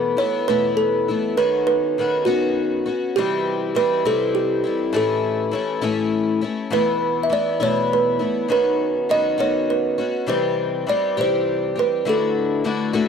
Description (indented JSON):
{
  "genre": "rock",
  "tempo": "67 BPM (dotted quarters)",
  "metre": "6/8",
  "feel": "straight",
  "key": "unclear",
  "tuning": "A4 = 436 Hz",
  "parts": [
    { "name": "kalimba", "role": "melody", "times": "0.0-13.1 s", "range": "F#4 to E5", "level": "-20 LUFS", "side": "right 3 dB", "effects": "none" },
    { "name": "picked twelve-string acoustic guitar", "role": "accompaniment", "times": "0.0-13.1 s", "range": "E2 to G4", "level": "-22 LUFS", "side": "left 6 dB", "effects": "none" }
  ],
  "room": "light reverb",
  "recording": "dry, close 1970s-style studio recording",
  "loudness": "-18 LUFS",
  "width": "side -6 dB against mid",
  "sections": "0.0-13.1 A section",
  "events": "none",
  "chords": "0.0 Esus4; 1.4 Badd9/D#; 3.1 C; 4.9 A; 6.7 Esus4; 8.5 Badd9/D#; 10.3 C; 12.1 Dadd9"
}